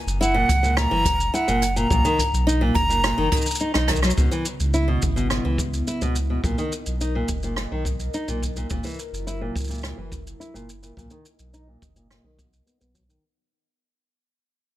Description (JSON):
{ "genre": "folktronica", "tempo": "106 BPM", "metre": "4/4", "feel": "straight", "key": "unclear", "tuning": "A4 = 440 Hz", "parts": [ { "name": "warm sub bass", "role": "bass", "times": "0.1-13.2 s", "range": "F#1 to C#2", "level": "-25 LUFS", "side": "equal", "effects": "tube saturation" }, { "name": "jazz brush drum kit", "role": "drums", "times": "0.1-13.2 s", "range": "hi-hat, rim click, shaker", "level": "-29 LUFS", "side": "right 1 dB", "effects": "none" }, { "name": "breathy silver concert flute", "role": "melody", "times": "0.2-3.6 s", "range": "F#5 to A#5", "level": "-23 LUFS", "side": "equal", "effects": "ping-pong delay" }, { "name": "nylon-string guitar", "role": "arpeggios", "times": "0.2-13.2 s", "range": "A#2 to E4", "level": "-26 LUFS", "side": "equal", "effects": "low-pass filter, ping-pong delay" }, { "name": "kick drum", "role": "drums", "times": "0.5-13.1 s", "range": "none", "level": "-26 LUFS", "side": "equal", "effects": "none" }, { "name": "warbly tape-like pad", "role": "sustained chords", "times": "4.5-13.2 s", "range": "C#3 to D#5", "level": "-34 LUFS", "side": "right 1 dB", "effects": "chorus, built-in reverb" } ], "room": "light reverb, studio ambience", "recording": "none", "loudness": "-20 LUFS", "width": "side -14 dB against mid", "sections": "0.0-4.2 A section; 4.2-13.2 B section", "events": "drum fill 3.7-4.2; fade-out 4.2-13.2; filter sweep on nylon-string guitar 4.2-13.2", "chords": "0.0 F#7; 1.9 Bmaj7; 4.2 C#m7; 6.4 Bmaj7; 8.7 F#7; 11.0 Bmaj7" }